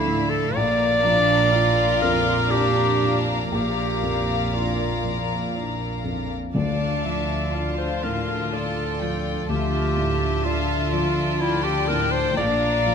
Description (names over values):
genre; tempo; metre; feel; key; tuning
cinematic; 61 BPM; 3/4; rubato; D minor; A4 = 438 Hz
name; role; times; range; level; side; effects
rich studio violin section; melody; 0.0-12.9 s; F5 to Bb5; -32 LUFS; left 5 dB; none
clear clarinet; second line; 0.0-12.9 s; E4 to D5; -24 LUFS; equal; none
warm studio violin section; second line; 0.0-12.9 s; D5 to G5; -29 LUFS; left 4 dB; none
felt-muted upright piano; accompaniment; 0.0-12.9 s; Bb1 to D5; -28 LUFS; left 2 dB; none
rich studio viola section; accompaniment; 0.0-12.9 s; A3 to F4; -30 LUFS; right 1 dB; none
warm studio cello section; bass; 0.0-12.9 s; Bb2 to D3; -31 LUFS; right 1 dB; none
warm studio double bass section; bass; 0.0-12.9 s; Bb1 to D2; -28 LUFS; right 4 dB; none
timpani; percussion; 6.5-8.0 s; D3; -29 LUFS; left 2 dB; none
room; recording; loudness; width
moderate scoring stage reverb, RT60 1.8 s; none; -20 LUFS; side -7 dB against mid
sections
0.0-12.9 A section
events
none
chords
0.0 Dmadd9; 0.6 Bb; 6.5 Dmadd9; 12.4 Bb